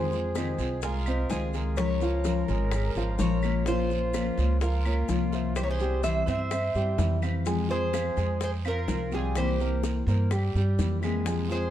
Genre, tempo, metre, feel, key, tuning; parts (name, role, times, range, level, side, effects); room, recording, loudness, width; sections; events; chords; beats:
latin, Cuban son and guajira; 126 BPM; 4/4; straight; F minor; A4 = 437 Hz
Cuban tres; melody; 0.0-11.7 s; Ab4 to E5; -32 LUFS; equal; slapback echo
warm trumpet; second line; 0.0-11.7 s; F4 to C5; -40 LUFS; right 3 dB
nylon-string guitar; accompaniment; 0.0-11.7 s; C3 to Bb4; -32 LUFS; left 5 dB
warm concert grand piano; arpeggios; 0.0-11.7 s; F3 to Ab5; -34 LUFS; right 1 dB
upright bass; bass; 0.0-11.7 s; Ab1 to G2; -28 LUFS; right 1 dB
bongos; percussion; 0.1-11.7 s; -37 LUFS; left 4 dB
maracas; percussion; 0.1-11.7 s; -48 LUFS; left 7 dB
claves; percussion; 0.4-11.3 s; -44 LUFS; equal
guiro; percussion; 0.4-11.7 s; -45 LUFS; right 8 dB
moderate studio reverb, RT60 0.9 s; dark, warm production; -25 LUFS; side -12 dB against mid
0.0-7.5 A section; 7.5-11.7 B section
0.0 Fm7; 1.8 Db6; 3.7 Bbm; 5.6 C; 7.5 Fm; 9.4 C7
0.36 0.83 1.30 | 1.78 2.25 2.72 3.20 | 3.67 4.14 4.62 5.09 | 5.57 6.04 6.51 6.99 | 7.46 7.94 8.41 8.89 | 9.36 9.84 10.31 10.78 | 11.26